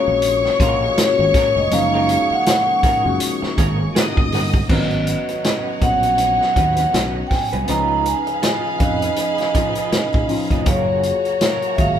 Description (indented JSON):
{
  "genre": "lush 1970s-style soul",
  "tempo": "80 BPM",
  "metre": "4/4",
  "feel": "swing 58% on 16ths",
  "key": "F# major",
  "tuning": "A4 = 440 Hz",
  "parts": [
    { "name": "vibraphone with medium mallets", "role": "melody", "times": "0.0-12.0 s", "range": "C#5 to A#5", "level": "-19 LUFS", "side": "equal", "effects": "none" },
    { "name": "warm studio violin section", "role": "second line", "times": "0.0-12.0 s", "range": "D#4 to D#6", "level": "-26 LUFS", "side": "equal", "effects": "slapback echo" },
    { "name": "mellow tine electric piano", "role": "accompaniment", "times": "0.0-12.0 s", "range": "E#3 to C#5", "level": "-25 LUFS", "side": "left 3 dB", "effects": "overdrive, phaser" },
    { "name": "percussive tonewheel organ", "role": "sustained chords", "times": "0.0-4.7 s", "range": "G#3 to G#4", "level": "-33 LUFS", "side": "equal", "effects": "chorus vibrato, slow rotary speaker" },
    { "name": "electric guitar through a small old amp", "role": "riff", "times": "0.0-11.8 s", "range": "C#4 to F#5", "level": "-29 LUFS", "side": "right 4 dB", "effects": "tremolo" },
    { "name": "fingered electric bass", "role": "bass", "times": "0.1-12.0 s", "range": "E#1 to E#2", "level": "-24 LUFS", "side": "right 1 dB", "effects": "none" },
    { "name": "vintage drum kit", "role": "drums", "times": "0.2-12.0 s", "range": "crash cymbal, hi-hat, kick drum, snare drum", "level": "-20 LUFS", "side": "equal", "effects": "none" }
  ],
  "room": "moderate large studio reverb, RT60 1.4 s",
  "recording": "band playing live in one room",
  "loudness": "-15 LUFS",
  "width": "side -9 dB against mid",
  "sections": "0.0-4.7 A section; 4.7-12.0 B section",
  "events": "none",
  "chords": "0.0 F#maj9; 4.7 G#m11; 7.7 C#9; 10.7 F#maj9"
}